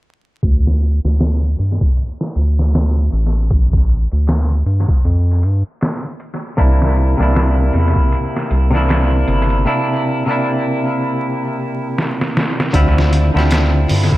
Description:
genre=trip hop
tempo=78 BPM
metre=4/4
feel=swing 59% on 16ths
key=D minor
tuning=A4 = 440 Hz
part: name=round analog bass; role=bass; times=0.4-14.1 s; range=G1 to G2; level=-14 LUFS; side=equal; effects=tube saturation
part: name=trip hop sampler-style drum kit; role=drums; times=0.4-14.2 s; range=hi-hat, kick drum, snare drum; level=-18 LUFS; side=equal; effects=low-pass filter on kick, low-pass filter on hats, low-pass filter on snare, tape echo
part: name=semi-hollow electric guitar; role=accompaniment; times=6.6-14.2 s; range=C3 to G4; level=-17 LUFS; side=equal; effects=harmonic tremolo, tape echo
room=little or no reverb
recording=echo-heavy mix, vinyl crackle, low-pass filter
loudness=-13 LUFS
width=side -17 dB against mid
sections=0.4-12.7 A section; 12.7-14.2 B section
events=filter sweep 0.4-12.7; break 9.7-12.7; drum fill 12.0-12.7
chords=0.4 D5; 6.6 C9; 12.7 Dm11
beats=| 0.43 1.20 1.97 2.74 | 3.51 4.28 5.05 5.82 | 6.59 7.36 8.12 8.89 | 9.66 10.43 11.20 11.97 | 12.74 13.51

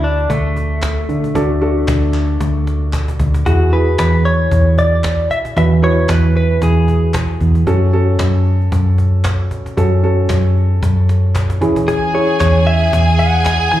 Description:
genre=piano-driven pop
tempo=114 BPM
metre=4/4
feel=swing 56% on 16ths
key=E mixolydian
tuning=A4 = 440 Hz
part: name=direct-recorded clean electric guitar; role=melody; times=0.0-7.1, 11.9-13.8 s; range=A3 to G#5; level=-19 LUFS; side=left 2 dB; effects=slapback echo
part: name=dark upright piano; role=accompaniment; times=0.0-13.8 s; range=D3 to B4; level=-20 LUFS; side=right 1 dB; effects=slapback echo
part: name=vintage muted fingered electric bass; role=bass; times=0.0-13.7 s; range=D2 to F#2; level=-14 LUFS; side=equal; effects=none
part: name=cajon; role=drums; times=0.0-13.8 s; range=none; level=-24 LUFS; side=equal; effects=slapback echo
part: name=group handclap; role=percussion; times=0.8-13.6 s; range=none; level=-32 LUFS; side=left 1 dB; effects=slapback echo
part: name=rich studio violin section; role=second line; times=11.9-13.8 s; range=G#4 to G#5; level=-18 LUFS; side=left 1 dB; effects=slapback echo
room=studio reverb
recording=live gig heard through the venue's PA, club reverb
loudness=-12 LUFS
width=side -13 dB against mid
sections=0.0-3.5 A section; 3.5-13.8 B section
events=drum fill 2.4-3.5, 10.8-11.9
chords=0.0 D; 3.5 Eadd9; 7.7 F#m; 11.6 C#m/E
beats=0.30 0.83 | 1.35 1.88 2.41 2.93 | 3.46 3.99 4.51 5.04 | 5.57 6.09 6.62 7.14 | 7.67 8.20 8.72 9.25 | 9.78 10.30 10.83 11.36 | 11.88 12.41 12.93 13.46

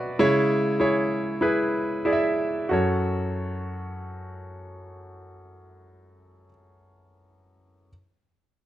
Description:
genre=pop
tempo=90-101 BPM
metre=4/4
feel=straight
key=F# minor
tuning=A4 = 440 Hz
part: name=clear concert grand piano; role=accompaniment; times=0.0-7.9 s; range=F#2 to E5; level=-23 LUFS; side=equal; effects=none
room=little or no reverb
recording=dry, close 1970s-style studio recording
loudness=-22 LUFS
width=side -13 dB against mid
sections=0.0-2.7 A section; 2.7-5.4 B section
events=slowing down 0.0-2.7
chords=0.2 C#m; 2.7 F#m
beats=| 0.20 0.80 1.42 2.05 | 2.71 3.38 4.05 4.71

